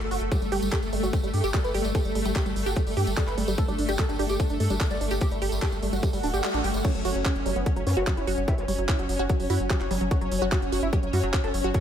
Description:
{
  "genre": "psychedelic trance",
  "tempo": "147 BPM",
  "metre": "4/4",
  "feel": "straight",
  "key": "F# phrygian",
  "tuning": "A4 = 440 Hz",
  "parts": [
    { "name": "pulsing gated texture", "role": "sustained chords", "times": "0.0-11.8 s", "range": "A3 to C#5", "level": "-31 LUFS", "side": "equal", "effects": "chorus, built-in reverb, sidechain pumping" },
    { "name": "round analog bass", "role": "bass", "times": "0.0-11.7 s", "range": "D1 to G2", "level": "-29 LUFS", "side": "equal", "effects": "none" },
    { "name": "garage drum kit", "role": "drums", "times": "0.0-11.8 s", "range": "crash cymbal, handclaps, hi-hat", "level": "-34 LUFS", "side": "right 1 dB", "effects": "none" },
    { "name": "wide unison pluck", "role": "riff", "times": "0.1-11.8 s", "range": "F#3 to A4", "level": "-32 LUFS", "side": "moving between left 2 dB and right 4 dB", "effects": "auto-pan, sidechain pumping, ping-pong delay" },
    { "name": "wide unison lead", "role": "melody", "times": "0.3-11.8 s", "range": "F#3 to D5", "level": "-32 LUFS", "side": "right 1 dB", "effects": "phaser, sidechain pumping, tape echo" },
    { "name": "electronic kick drum", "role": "drums", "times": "0.3-11.8 s", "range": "none", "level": "-26 LUFS", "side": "equal", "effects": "none" },
    { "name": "tambourine", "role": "percussion", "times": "0.3-6.8 s", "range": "none", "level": "-40 LUFS", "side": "right 3 dB", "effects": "none" },
    { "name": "swell", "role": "sound effects", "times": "6.1-6.8 s", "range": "none", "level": "-34 LUFS", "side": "right 2 dB", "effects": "none" },
    { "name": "vowel-sweep wobble bass", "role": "second line", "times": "7.9-8.6 s", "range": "B3", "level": "-40 LUFS", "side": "left 2 dB", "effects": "none" }
  ],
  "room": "digital ambience",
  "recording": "none",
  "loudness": "-23 LUFS",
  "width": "side -9 dB against mid",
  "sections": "0.0-6.8 A section; 6.8-11.8 B section",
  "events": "swell 6.1-6.8; kick drops out 6.4-6.8; band accent 6.4; drop 6.8-11.8",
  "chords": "0.3 G5; 6.8 F#5",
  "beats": "| 0.32 0.72 1.13 1.54 | 1.95 2.36 2.76 3.17 | 3.58 3.99 4.40 4.80 | 5.21 5.62 6.03 6.44 | 6.85 7.25 7.66 8.07 | 8.48 8.89 9.29 9.70 | 10.11 10.52 10.93 11.34 | 11.74"
}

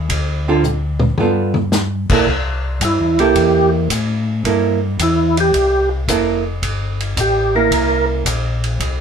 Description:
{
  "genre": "soul jazz organ trio",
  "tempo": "110 BPM",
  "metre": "4/4",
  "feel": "swing 69% on 8ths",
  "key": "C mixolydian",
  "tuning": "A4 = 440 Hz",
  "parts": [
    { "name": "mellow tonewheel organ", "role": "bass", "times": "0.0-9.0 s", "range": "F1 to A2", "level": "-20 LUFS", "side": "left 2 dB", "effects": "chorus vibrato, slow rotary speaker" },
    { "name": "warm soul drum kit", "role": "drums", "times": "0.1-9.0 s", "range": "crash cymbal, hi-hat, kick drum, ride cymbal, snare drum, toms", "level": "-21 LUFS", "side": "left 1 dB", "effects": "none" },
    { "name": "archtop guitar, miked and amplified", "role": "accompaniment", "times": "0.5-8.2 s", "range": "D3 to A4", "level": "-17 LUFS", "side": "right 5 dB", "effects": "none" },
    { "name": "percussive tonewheel organ", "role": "melody", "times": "2.8-8.1 s", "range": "E4 to Bb4", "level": "-15 LUFS", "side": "right 2 dB", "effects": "overdrive, chorus vibrato, slow rotary speaker" }
  ],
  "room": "moderate studio ambience, RT60 0.5 s",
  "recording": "band playing live in one room",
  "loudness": "-14 LUFS",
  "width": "side -7 dB against mid",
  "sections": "0.0-2.3 A section; 2.3-9.0 B section",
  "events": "drum fill 0.6-1.7; tonewheel organ solo 2.3-9.0",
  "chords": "0.1 Dm7; 1.2 G9; 2.3 C13",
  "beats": "| 0.10 0.64 1.19 1.73 | 2.27 2.82 3.36 3.91 | 4.45 4.99 5.54 6.08 | 6.62 7.17 7.71 8.26 | 8.80"
}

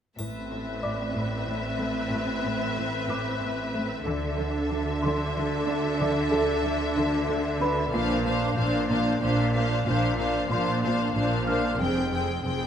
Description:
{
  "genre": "cinematic, suspense film score",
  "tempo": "93 BPM",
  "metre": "3/4",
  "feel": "straight",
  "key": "A minor",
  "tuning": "A4 = 440 Hz",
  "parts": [
    { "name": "rich studio violin section", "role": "melody", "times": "0.2-12.7 s", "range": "E5 to G5", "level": "-32 LUFS", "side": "left 5 dB", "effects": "none" },
    { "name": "warm studio viola section", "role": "accompaniment", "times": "0.2-12.7 s", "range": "C4 to C5", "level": "-29 LUFS", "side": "equal", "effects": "none" },
    { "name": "rich studio cello section", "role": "riff", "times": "0.2-12.6 s", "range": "F2 to D4", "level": "-32 LUFS", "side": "equal", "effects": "none" },
    { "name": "clear studio double bass section", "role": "bass", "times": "0.2-12.7 s", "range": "F1 to D2", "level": "-32 LUFS", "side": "right 2 dB", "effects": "none" },
    { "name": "rich studio cello section", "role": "bass", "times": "0.2-12.7 s", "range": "F2 to D3", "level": "-31 LUFS", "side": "right 2 dB", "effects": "none" },
    { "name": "triangle", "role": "percussion", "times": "0.2-1.4 s", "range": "none", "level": "-50 LUFS", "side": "left 5 dB", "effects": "none" },
    { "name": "music box", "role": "texture", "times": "0.8-12.7 s", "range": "A4 to F6", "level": "-33 LUFS", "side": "equal", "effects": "none" }
  ],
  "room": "wet scoring stage reverb, RT60 1.6 s",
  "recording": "none",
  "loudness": "-24 LUFS",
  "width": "side -9 dB against mid",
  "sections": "0.2-12.7 A section",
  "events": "none",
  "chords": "0.2 Amadd9; 4.1 Dsus2; 7.9 Bbadd9; 11.8 Fmadd9",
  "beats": "| 0.19 0.83 1.48 | 2.12 2.77 3.41 | 4.06 4.70 5.35 | 5.99 6.64 7.29 | 7.93 8.57 9.22 | 9.87 10.51 11.16 | 11.80 12.45"
}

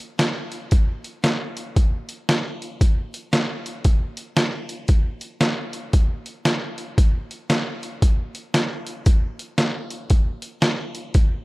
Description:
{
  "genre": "country",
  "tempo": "115 BPM",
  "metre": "4/4",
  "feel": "swing 62% on 8ths",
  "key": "none",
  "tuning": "none",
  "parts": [
    { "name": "trip hop sampler-style drum kit", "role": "drums", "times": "0.0-11.3 s", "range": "hi-hat, kick drum, snare drum", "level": "-19 LUFS", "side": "equal", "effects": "none" }
  ],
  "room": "light reverb",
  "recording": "rough home demo mix",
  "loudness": "-20 LUFS",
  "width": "side -22 dB against mid",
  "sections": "0.0-11.4 A section",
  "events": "none",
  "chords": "none",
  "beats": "0.20 0.72 1.24 | 1.76 2.28 2.80 3.32 | 3.85 4.37 4.89 5.41 | 5.93 6.45 6.98 7.50 | 8.02 8.54 9.06 9.59 | 10.11 10.63 11.15"
}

